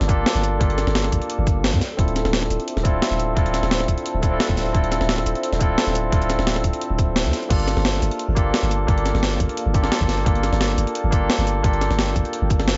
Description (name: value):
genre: liquid drum and bass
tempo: 174 BPM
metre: 4/4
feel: swing 53% on 16ths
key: G dorian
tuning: A4 = 440 Hz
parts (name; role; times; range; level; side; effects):
- barky tine electric piano; accompaniment; 0.0-12.8 s; Bb3 to A4; -26 LUFS; equal; vintage 12-bit sampler grit, digital delay
- shimmering ambient pad; sustained chords; 0.0-12.8 s; Bb3 to A5; -34 LUFS; equal; none
- long sustained 808-style bass; bass; 0.0-12.8 s; D1 to G2; -25 LUFS; equal; none
- breakbeat sampler-style drum kit; drums; 0.0-12.8 s; crash cymbal, hi-hat, shaker, snare drum; -26 LUFS; equal; none
- electronic kick drum; drums; 0.1-12.6 s; none; -23 LUFS; equal; none
room: little or no reverb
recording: dark, warm production, nothing above 7.8 kHz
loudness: -21 LUFS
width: mono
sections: 0.0-7.5 A section; 7.5-12.8 A section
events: drop 0.0-7.5, 7.5-12.8; kick drops out 7.2-7.5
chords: 0.0 Gm9; 1.8 Dm9; 7.5 Gm9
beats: 0.26 | 0.61 0.95 1.30 1.64 | 1.99 2.33 2.68 3.02 | 3.37 3.71 4.05 4.40 | 4.75 5.09 5.43 5.78 | 6.12 6.47 6.81 7.16 | 7.50 7.85 8.19 8.54 | 8.88 9.23 9.57 9.92 | 10.26 10.61 10.95 11.30 | 11.64 11.99 12.33 12.68